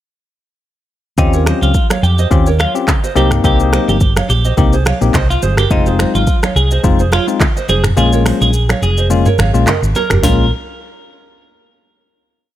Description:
afrobeats; 106 BPM; 4/4; swing 55% on 16ths; Bb dorian; A4 = 440 Hz
twelve-string electric guitar; melody; 1.2-10.5 s; Eb4 to Bb4; -20 LUFS; right 1 dB; digital delay
bell-like tine electric piano; accompaniment; 1.2-10.5 s; Ab3 to G4; -17 LUFS; left 7 dB
hollow-body short-scale fingered electric bass; bass; 1.2-10.5 s; F1 to F2; -14 LUFS; equal
afro-pop drum kit; drums; 1.2-10.4 s; finger snaps, handclaps, hi-hat, kick drum, rim click, shaker, snare drum, toms; -16 LUFS; right 1 dB
congas; percussion; 1.2-10.5 s; -24 LUFS; right 4 dB
nylon-string guitar; riff; 1.3-10.5 s; F4 to F5; -22 LUFS; right 7 dB; digital delay
little or no reverb; -10 LUFS; side -13 dB against mid
1.2-10.2 chorus; 10.2-12.5 final chord
kick muted 8.0-10.2
1.2 Eb13; 3.2 Cm7; 5.7 Fm7; 8.0 Bbm7

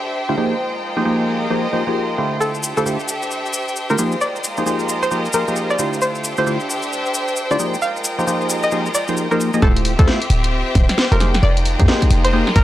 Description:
UK garage, two-step garage; 133 BPM; 4/4; swing 62% on 16ths; A4 = 435 Hz
clear studio violin section; sustained chords; 0.0-12.6 s; Ab3 to G5; -26 LUFS; right 1 dB; sidechain pumping
bright symphonic string section; texture; 0.0-12.6 s; D4 to G5; -26 LUFS; left 1 dB; sidechain pumping
garage drum kit; drums; 0.1-12.6 s; hi-hat, snare drum; -22 LUFS; equal; low-pass filter on hats, studio reverb, low-pass filter on snare
percussive organ stab; stabs; 0.3-12.5 s; D3 to Eb5; -21 LUFS; equal; chorus, phaser, tape echo
string-like resonator pluck; melody; 2.4-12.6 s; A4 to F5; -23 LUFS; equal; chorus, tape echo
cabasa; percussion; 2.4-9.6 s; -26 LUFS; left 2 dB
short 808-style bass; bass; 9.6-12.6 s; D1 to F2; -16 LUFS; equal; sidechain pumping
electronic kick drum; drums; 9.6-12.6 s; -15 LUFS; equal; studio reverb
light reverb, studio reverb; dry, gritty hardware recording; -16 LUFS; side -14 dB against mid
0.0-9.6 A section; 9.6-12.6 B section
drop 9.6-12.6
0.4 Fm11; 2.4 Dm11; 4.0 Fm11; 6.0 Dm11; 7.6 Fm11; 9.6 Dm11; 11.2 Fm11

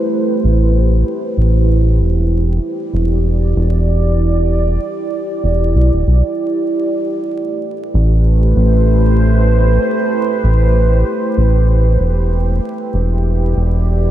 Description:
ambient dub; 96 BPM; 4/4; swing 57% on 16ths; A minor; A4 = 440 Hz
deep dark ambient pad; sustained chords; 0.0-14.1 s; A3 to D5; -18 LUFS; right 2 dB; chorus, built-in reverb
round analog bass; bass; 0.4-14.1 s; D1 to B1; -12 LUFS; equal
light reverb, digital ambience; dark, warm production, vinyl crackle; -12 LUFS; side -12 dB against mid
0.0-14.1 A section
0.0 Am7; 2.0 Em7; 7.0 Am7; 12.0 Em7

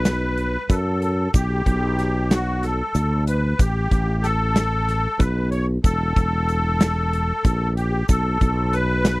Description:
progressive instrumental, band music in an uneven meter; 187 BPM (eighths); 7/8; straight; A4 = 441 Hz
musette accordion; second line; 0.0-9.2 s; F#4 to C#5; -24 LUFS; left 1 dB
sustaining fretless electric bass; bass; 0.0-9.2 s; E1 to F#2; -21 LUFS; equal
huge arena drum kit; drums; 0.1-9.2 s; hi-hat, kick drum, snare drum; -19 LUFS; equal
tube shaker; percussion; 0.1-9.2 s; -39 LUFS; right 8 dB
little or no reverb; dry, close 1970s-style studio recording; -18 LUFS; side -21 dB against mid
0.0-9.2 A section
0.0 B5; 1.3 G/B; 3.6 A7sus2; 5.8 Esus4; 8.1 B5

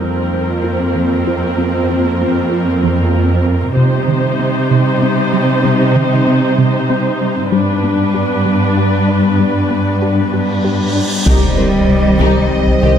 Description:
cinematic, hybrid orchestral and electronic film score; 64 BPM (dotted quarters); 6/8; straight; C minor; A4 = 440 Hz
warm symphonic viola section; accompaniment; 0.0-12.9 s; C4 to C5; -20 LUFS; equal
airy breathy pad; sustained chords; 0.0-13.0 s; Eb3 to D5; -18 LUFS; left 1 dB; chorus
resonant blip pluck; arpeggios; 0.0-13.0 s; C3 to G4; -20 LUFS; equal; phaser, digital delay
warm symphonic cello section; bass; 0.0-13.0 s; F2 to G3; -16 LUFS; right 1 dB
cymbal swell and impact; sound effects; 10.5-13.0 s; -21 LUFS; equal
warm symphonic violin section; melody; 11.3-13.0 s; Eb5; -21 LUFS; left 4 dB
warm symphonic violin section; second line; 11.3-12.9 s; Eb4 to C5; -25 LUFS; left 5 dB
mellow French horn section; sustained chords; 11.3-13.0 s; G4 to C5; -22 LUFS; left 1 dB
mellow trombone section; sustained chords; 11.3-13.0 s; C3 to Eb3; -24 LUFS; right 2 dB
round analog bass; riff; 11.3-13.0 s; C2 to C3; -20 LUFS; left 2 dB
dark symphonic double bass section; bass; 11.3-12.9 s; C2; -21 LUFS; right 2 dB
punchy sub bass; bass; 11.3-13.0 s; C2; -18 LUFS; left 1 dB
warm tuba; bass; 11.3-12.9 s; C2; -23 LUFS; right 4 dB
solo taiko drums; drums; 11.3-13.0 s; -20 LUFS; left 1 dB
moderate scoring stage reverb, RT60 1.8 s; -12 LUFS; side -8 dB against mid
0.0-11.3 A section; 11.3-13.0 B section
build-up 0.0-11.3; cymbal swell 10.5-11.3; impact 11.3-13.0
0.0 Fsus4; 3.8 Cm; 7.5 G; 11.3 Cm

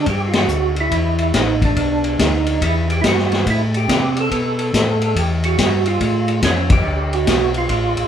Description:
soul jazz organ trio; 142 BPM; 4/4; swing 65% on 8ths; A4 = 440 Hz
percussive tonewheel organ; melody; 0.0-8.1 s; C#4 to A4; -20 LUFS; right 4 dB; slow rotary speaker, chorus vibrato
tonewheel organ; bass; 0.0-8.0 s; A1 to C3; -20 LUFS; equal; chorus vibrato, slow rotary speaker
vintage drum kit; drums; 0.1-8.0 s; hi-hat, kick drum, ride cymbal, snare drum; -19 LUFS; left 2 dB
moderate large studio reverb, RT60 1.0 s; band playing live in one room; -15 LUFS; side -9 dB against mid
0.1-8.1 A section
band accent 0.3, 6.6
0.1 Em11; 1.8 Bm; 2.6 Emadd9; 3.5 Am7; 5.2 Emadd9; 6.0 Faug; 6.9 Dm

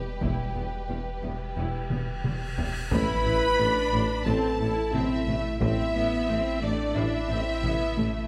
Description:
cinematic, hybrid orchestral and electronic film score; 89 BPM; 4/4; straight; A minor; A4 = 440 Hz
clear symphonic violin section; melody; 0.0-8.3 s; B4 to B5; -40 LUFS; equal; low-pass filter
rich symphonic violin section; second line; 0.0-8.3 s; G4 to B5; -36 LUFS; equal
mellow French horn section; sustained chords; 0.0-8.3 s; B2 to B4; -33 LUFS; equal; low-pass filter
pure sine sub bass; bass; 0.0-8.3 s; E1 to A1; -37 LUFS; equal
rich symphonic viola section; accompaniment; 0.2-8.3 s; G3 to E4; -36 LUFS; equal; low-pass filter
clear symphonic double bass section; bass; 0.2-8.1 s; E1 to A1; -38 LUFS; equal
mellow tuba; bass; 0.2-8.1 s; E1 to A1; -37 LUFS; equal
rich symphonic cello section; bass; 0.2-8.1 s; E2 to A2; -37 LUFS; equal
taiko ensemble; drums; 0.2-8.3 s; -36 LUFS; equal
cymbal swell and impact; sound effects; 1.6-5.6 s; -40 LUFS; equal
wet scoring stage reverb, RT60 1.6 s; -27 LUFS; mono
0.0-2.9 A section; 2.9-8.3 B section
cymbal swell 1.6-2.9; drum fill 1.9-2.9; impact 2.9-5.6
0.0 Em; 2.9 A5

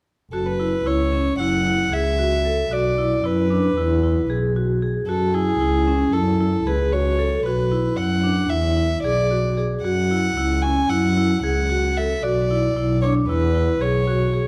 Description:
contemporary instrumental, chamber music in an uneven meter; 227 BPM (eighths); 9/8; straight; F# minor; A4 = 439 Hz
rich violin; melody; 0.3-14.4 s; G#4 to G#5; -26 LUFS; equal
vibraphone with medium hard mallets; arpeggios; 0.3-14.5 s; C#4 to A4; -25 LUFS; equal
muted double bass; bass; 0.3-14.5 s; F#1 to F#2; -24 LUFS; equal
wet recital hall reverb, RT60 1.6 s; dark, warm production; -20 LUFS; mono
0.3-14.5 A section
0.3 F#7(no3); 2.7 Bm; 3.8 E; 5.1 F#m7; 7.4 Bm; 8.5 E7; 9.8 F#7(no3); 12.2 Bm; 13.3 E

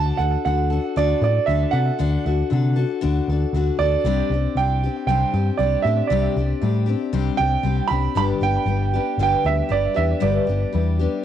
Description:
folk rock and heartland rock; 117 BPM; 4/4; straight; D mixolydian; A4 = 438 Hz
warm grand piano; melody; 0.0-11.2 s; D5 to B5; -23 LUFS; right 9 dB; cassette tape, analog delay
picked steel-string acoustic guitar; accompaniment; 0.0-11.2 s; G2 to A4; -24 LUFS; left 8 dB; cassette tape
picked electric bass; bass; 0.0-11.1 s; G1 to C3; -21 LUFS; equal; transformer saturation
light reverb; home recording on cassette; -18 LUFS; side -10 dB against mid
0.0-11.2 A section
0.0 D; 4.0 Csus2; 8.2 G

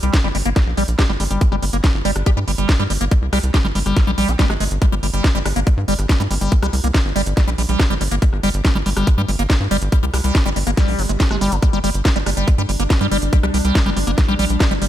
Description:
psychedelic trance; 141 BPM; 4/4; straight; G phrygian; A4 = 444 Hz
liquid acid bass; riff; 0.0-14.9 s; F3 to G4; -22 LUFS; moving between left 4 dB and right 4 dB; phaser, auto-pan, sidechain pumping, ping-pong delay
tight sequencer bass; bass; 0.0-14.9 s; G1 to G2; -20 LUFS; equal
garage drum kit; drums; 0.0-14.9 s; hi-hat, rim click, snare drum; -24 LUFS; equal
electronic kick drum; drums; 0.1-14.7 s; -16 LUFS; equal
swell; sound effects; 10.9-11.6 s; -30 LUFS; right 6 dB
evolving wavetable pad; sustained chords; 12.5-14.9 s; G3 to D4; -26 LUFS; left 2 dB; phaser, built-in reverb, sidechain pumping
little or no reverb; -15 LUFS; side -12 dB against mid
0.0-14.9 A section
swell 10.9-11.6
0.0 G5

